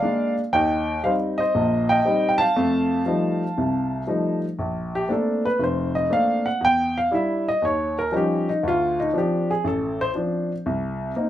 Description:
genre	solo jazz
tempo	118 BPM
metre	4/4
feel	swing 68% on 8ths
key	Bb major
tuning	A4 = 440 Hz
part	warm baby grand piano	solo	0.0-11.3 s	F1 to A5	-20 LUFS	equal	none
room	moderate studio reverb, RT60 0.5 s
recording	none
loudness	-20 LUFS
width	side -12 dB against mid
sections	0.0-4.6 A section; 4.6-11.3 B section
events	grand piano solo 4.6-11.3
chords	0.0 Bb7; 0.5 Eb6; 2.6 F9; 4.6 Bbmaj9; 6.6 Em7; 7.6 Eb9; 8.6 Dm7; 10.7 Cm7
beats	0.02 | 0.53 1.04 1.54 2.05 | 2.56 3.06 3.57 4.08 | 4.58 5.09 5.59 6.10 | 6.61 7.11 7.62 8.13 | 8.63 9.14 9.64 10.15 | 10.66 11.16

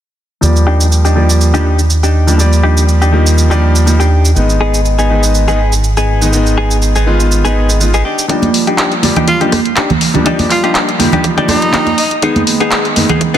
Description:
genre	nu-disco, nu disco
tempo	122 BPM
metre	4/4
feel	swing 54% on 16ths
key	Eb major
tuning	A4 = 440 Hz
part	bright concert grand piano	accompaniment	0.4-13.4 s	Eb3 to D5	-16 LUFS	left 1 dB	low-pass filter, digital delay
part	fat analog bass	bass	0.4-8.0 s	Ab1 to Eb2	-11 LUFS	right 1 dB	sidechain pumping
part	house drum kit	drums	0.4-13.4 s	handclaps, hi-hat, rim click, shaker	-17 LUFS	right 1 dB	none
part	direct-recorded clean electric guitar	riff	0.7-13.4 s	Cb4 to G5	-17 LUFS	left 3 dB	wide subtle chorus, low-pass filter, digital delay
part	electronic kick drum	drums	8.3-13.3 s	none	-24 LUFS	equal	high-pass filter on kick
part	congas	percussion	8.4-13.2 s	none	-15 LUFS	right 5 dB	none
part	clear tenor saxophone	melody	9.3-12.2 s	Eb4 to F4	-18 LUFS	right 1 dB	dub echo
room	light reverb, studio ambience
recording	dense, heavily limited modern master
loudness	-9 LUFS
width	side -10 dB against mid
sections	0.4-8.3 A section; 8.3-13.4 B section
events	filter sweep on grand piano 0.4-8.3, 8.3-13.4; build-up 8.3-13.4; filter sweep on clean electric guitar 8.3-13.4; clean electric guitar fill 11.5-12.2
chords	0.4 Ebmaj7; 4.4 Abm; 8.1 Ebmaj7; 12.2 Abm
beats	| 0.43 0.92 1.41 1.90 | 2.39 2.89 3.38 3.87 | 4.36 4.85 5.34 5.84 | 6.33 6.82 7.31 7.80 | 8.30 8.79 9.28 9.77 | 10.26 10.76 11.25 11.74 | 12.23 12.72 13.21

